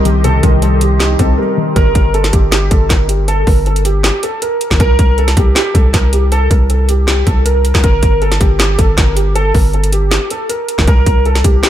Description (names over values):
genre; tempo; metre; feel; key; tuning
hip hop, trap; 158 BPM; 4/4; half-time; G minor; A4 = 443 Hz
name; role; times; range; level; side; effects
dark baby grand piano; melody; 0.0-11.7 s; G4 to Bb4; -17 LUFS; right 1 dB; analog chorus, diffuse ambient delay
felt-muted upright piano; accompaniment; 0.0-1.8 s; C3 to Eb4; -16 LUFS; left 5 dB; none
deep dark ambient pad; sustained chords; 0.0-1.7 s; G4 to C6; -23 LUFS; left 1 dB; chorus, built-in reverb
long sustained 808-style bass; bass; 0.0-11.6 s; G1 to C2; -13 LUFS; equal; none
trap drum kit; drums; 0.1-11.7 s; handclaps, hi-hat, kick drum, snare drum; -13 LUFS; equal; none
room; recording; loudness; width
little or no reverb; none; -10 LUFS; side -11 dB against mid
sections
0.0-1.8 A section; 1.8-11.7 B section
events
break 1.4-1.8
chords
0.0 Cm; 1.8 Gm; 4.8 Gmadd11/C; 7.8 Gm; 10.9 Gmadd11/C